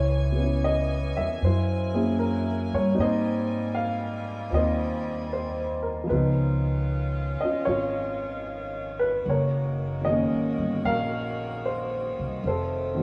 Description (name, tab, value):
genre	jazz ballad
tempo	76 BPM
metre	4/4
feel	swing 68% on 8ths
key	unclear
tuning	A4 = 437 Hz
part	warm baby grand piano	accompaniment	0.0-13.0 s	Eb3 to F5	-29 LUFS	equal	none
part	edgy saxophone section	sustained chords	0.0-13.0 s	Eb3 to Ab5	-39 LUFS	equal	none
part	upright bass	bass	0.0-13.0 s	F1 to Ab2	-30 LUFS	equal	none
room	moderate plate reverb, RT60 2.7 s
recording	heard from further back in the room, small room ambience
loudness	-26 LUFS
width	mono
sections	0.0-13.0 A section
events	none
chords	0.0 Dbm7; 1.4 Gb9; 3.0 Abmaj9; 6.1 Db9; 9.2 Gb69; 12.4 F7b9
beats	0.62 1.40 2.18 | 2.97 3.75 4.53 5.31 | 6.09 6.88 7.66 8.46 | 9.25 10.04 10.84 11.63 | 12.41